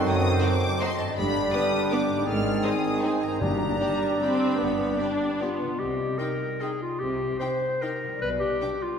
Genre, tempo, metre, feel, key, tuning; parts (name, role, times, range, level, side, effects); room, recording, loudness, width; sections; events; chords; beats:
classical, orchestral ballroom waltz; 141-174 BPM; 3/4; rubato; C minor; A4 = 439 Hz
rich studio violin section; melody; 0.0-8.7 s; Ab5 to F6; -34 LUFS; left 4 dB
clear clarinet; second line; 0.0-9.0 s; C4 to C5; -30 LUFS; left 1 dB
hollow flute section; second line; 0.0-5.6 s; B4 to D#5; -35 LUFS; equal
mellow cor anglais; second line; 0.0-5.6 s; F#4 to Ab4; -36 LUFS; right 3 dB
mellow bassoon; accompaniment; 0.0-5.6 s; D3 to G3; -31 LUFS; right 2 dB
warm French horn section; sustained chords; 0.0-5.6 s; C4 to A4; -33 LUFS; left 3 dB
warm trombone section; sustained chords; 0.0-5.6 s; D3 to Ab3; -32 LUFS; right 2 dB
concert harp; arpeggios; 0.0-9.0 s; F#2 to Eb5; -35 LUFS; left 4 dB
dark studio cello section; bass; 0.1-8.5 s; F#2 to C3; -33 LUFS; right 2 dB
rich studio double bass section; bass; 0.1-8.5 s; F#1 to C2; -36 LUFS; right 2 dB
rich studio violin section; second line; 0.4-8.7 s; F#4 to G5; -39 LUFS; left 2 dB
rich studio viola section; accompaniment; 0.4-8.7 s; G3 to D#4; -32 LUFS; right 1 dB
timpani; percussion; 3.4-4.0 s; G2; -33 LUFS; left 1 dB
wet concert hall reverb, RT60 1.9 s; heard from further back in the room; -23 LUFS; side -7 dB against mid
0.0-5.8 A section; 5.8-9.0 B section
0.0 F#dim7; 1.2 G; 2.3 Ab; 3.4 G; 5.8 Cm; 8.2 G/B
| 0.06 0.42 0.80 | 1.17 1.53 1.91 | 2.27 2.63 3.03 | 3.41 3.81 4.22 | 4.60 5.00 5.41 | 5.80 6.20 6.62 | 7.01 7.41 7.82 | 8.21 8.61